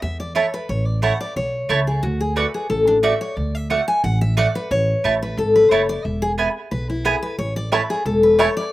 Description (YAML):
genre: bluegrass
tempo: 179 BPM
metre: 4/4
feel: straight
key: A major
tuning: A4 = 440 Hz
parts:
  - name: picked steel-string acoustic guitar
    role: accompaniment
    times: 0.0-8.7 s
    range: D4 to G#5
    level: -20 LUFS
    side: left 2 dB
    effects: none
  - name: upright bass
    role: bass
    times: 0.0-8.5 s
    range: E1 to E2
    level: -23 LUFS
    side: equal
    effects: none
  - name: mandolin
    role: stabs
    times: 0.3-8.5 s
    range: A3 to A5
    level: -21 LUFS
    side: right 4 dB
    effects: slapback echo
  - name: bluegrass banjo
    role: arpeggios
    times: 7.7-8.5 s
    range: A3 to E4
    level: -21 LUFS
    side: right 3 dB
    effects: slapback echo
room: little or no reverb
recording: recorded outdoors, with no room sound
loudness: -17 LUFS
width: side -16 dB against mid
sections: 0.0-8.7 A section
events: steel-string acoustic guitar solo 0.0-8.7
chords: 0.0 A; 6.0 E; 7.4 A